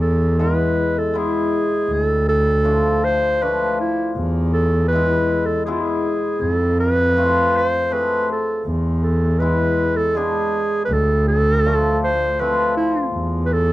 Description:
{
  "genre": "klezmer",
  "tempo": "80 BPM",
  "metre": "3/4",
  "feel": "straight",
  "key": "E phrygian dominant",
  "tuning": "A4 = 438 Hz",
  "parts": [
    { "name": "warm clarinet", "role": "melody", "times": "0.0-13.7 s", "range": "E4 to C5", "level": "-19 LUFS", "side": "right 1 dB", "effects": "none" },
    { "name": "dark double bass", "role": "bass", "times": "0.0-13.7 s", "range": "D2 to F2", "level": "-21 LUFS", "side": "equal", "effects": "none" },
    { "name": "cimbalom", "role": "accompaniment", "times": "0.4-13.2 s", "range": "F3 to G#4", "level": "-23 LUFS", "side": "left 4 dB", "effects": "none" }
  ],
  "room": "little or no reverb",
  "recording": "dry, close 1970s-style studio recording",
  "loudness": "-16 LUFS",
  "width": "side -16 dB against mid",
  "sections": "0.0-13.7 A section",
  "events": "none",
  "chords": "0.0 E; 1.9 Dm; 4.2 E; 6.4 F; 8.7 E; 10.9 Dm; 13.1 N.C."
}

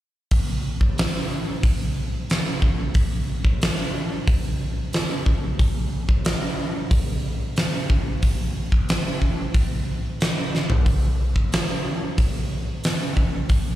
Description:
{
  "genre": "rock",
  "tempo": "91 BPM",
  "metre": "4/4",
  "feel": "straight",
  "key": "none",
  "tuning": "none",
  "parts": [
    { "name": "huge arena drum kit", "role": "drums", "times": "0.3-13.7 s", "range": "hi-hat, kick drum, snare drum, toms", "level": "-20 LUFS", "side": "equal", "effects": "none" }
  ],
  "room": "light reverb",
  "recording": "live gig heard through the venue's PA, club reverb",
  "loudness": "-20 LUFS",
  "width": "side -14 dB against mid",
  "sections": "0.3-10.9 A section; 10.9-13.8 B section",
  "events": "drum fill 10.5-10.9",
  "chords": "none"
}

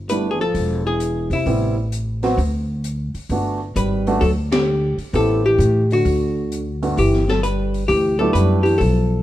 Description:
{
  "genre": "jazz, small-group swing and bop",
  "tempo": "131 BPM",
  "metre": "4/4",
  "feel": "swing 67% on 8ths",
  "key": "G major",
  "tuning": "A4 = 440 Hz",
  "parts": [
    { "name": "upright bass", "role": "bass", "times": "0.0-9.2 s", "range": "E1 to A2", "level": "-21 LUFS", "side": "equal", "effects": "none" },
    { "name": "archtop guitar, miked and amplified", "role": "melody", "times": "0.1-9.2 s", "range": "E4 to B4", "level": "-20 LUFS", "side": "left 3 dB", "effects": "none" },
    { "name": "breathy trombone", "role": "second line", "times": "0.1-9.2 s", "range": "C3 to G3", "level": "-24 LUFS", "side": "right 2 dB", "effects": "none" },
    { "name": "warm grand piano", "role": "accompaniment", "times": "0.1-8.8 s", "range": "G2 to G4", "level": "-22 LUFS", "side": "right 3 dB", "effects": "none" },
    { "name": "open jazz drum kit", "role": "drums", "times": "0.1-9.0 s", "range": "hi-hat, kick drum, ride cymbal, snare drum", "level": "-29 LUFS", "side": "left 1 dB", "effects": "none" }
  ],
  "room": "moderate stone room reverb, RT60 1.2 s",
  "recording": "band playing live in one room",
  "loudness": "-17 LUFS",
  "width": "side -14 dB against mid",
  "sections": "0.0-7.0 A section; 7.0-9.2 B section",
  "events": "band accent 4.5",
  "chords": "0.0 G6; 0.6 E; 1.5 Am9; 2.4 N.C.; 3.3 Gmaj9; 5.1 Am7; 6.1 D; 7.0 G6"
}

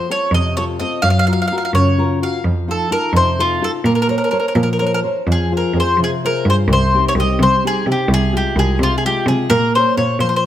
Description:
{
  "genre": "italian folk, Italian serenade",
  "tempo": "85 BPM (dotted quarters)",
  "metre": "6/8",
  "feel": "straight",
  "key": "Bb harmonic minor, F minor from 5.3 s",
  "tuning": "A4 = 440 Hz",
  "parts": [
    { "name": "bowl-back mandolin", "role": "melody", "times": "0.0-10.4 s", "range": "F4 to F5", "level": "-18 LUFS", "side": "left 1 dB", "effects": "none" },
    { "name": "nylon-string guitar", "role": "accompaniment", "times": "0.0-10.5 s", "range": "C3 to Db5", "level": "-20 LUFS", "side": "left 2 dB", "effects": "none" },
    { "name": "bright cello", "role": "bass", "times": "0.3-10.5 s", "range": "C2 to F3", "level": "-17 LUFS", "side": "right 1 dB", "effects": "none" }
  ],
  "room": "light reverb",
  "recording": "close, detailed microphones",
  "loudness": "-14 LUFS",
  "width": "side -11 dB against mid",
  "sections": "0.0-5.3 A section; 5.3-10.5 B section",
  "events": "none",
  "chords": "0.0 F; 1.0 Gbmaj7; 2.4 F7; 3.8 Bbmadd9; 5.3 Fm; 6.7 Cm; 8.1 Fmadd9/C; 9.5 Bbmadd9"
}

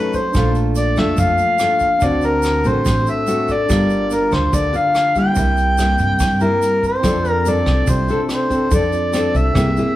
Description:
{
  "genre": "bossa nova",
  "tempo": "143 BPM",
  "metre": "4/4",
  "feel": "straight",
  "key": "F major",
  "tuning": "A4 = 440 Hz",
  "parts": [
    { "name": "overdriven harmonica", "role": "melody", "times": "0.0-10.0 s", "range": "Bb4 to G5", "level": "-18 LUFS", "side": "left 1 dB", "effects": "none" },
    { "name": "barky tine electric piano", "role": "accompaniment", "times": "0.0-10.0 s", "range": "A3 to A5", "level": "-25 LUFS", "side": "right 4 dB", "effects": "none" },
    { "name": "nylon-string guitar", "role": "accompaniment", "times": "0.0-10.0 s", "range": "G2 to Bb4", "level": "-21 LUFS", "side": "left 2 dB", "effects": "none" },
    { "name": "vintage brush drum kit", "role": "drums", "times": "0.1-9.9 s", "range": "hi-hat, kick drum, rim click", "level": "-24 LUFS", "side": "equal", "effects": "none" },
    { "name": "egg shaker", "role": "percussion", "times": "0.1-10.0 s", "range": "none", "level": "-36 LUFS", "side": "right 6 dB", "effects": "none" },
    { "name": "upright bass", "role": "bass", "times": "0.3-9.8 s", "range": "G1 to G2", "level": "-20 LUFS", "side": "equal", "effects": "none" }
  ],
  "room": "wet large studio reverb, RT60 0.9 s",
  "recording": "heard from further back in the room",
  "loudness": "-14 LUFS",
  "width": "side -14 dB against mid",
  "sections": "0.0-10.0 A section",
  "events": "none",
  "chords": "0.3 Bbmaj7; 2.0 D7; 3.7 Gm7; 5.4 C7; 7.0 F6"
}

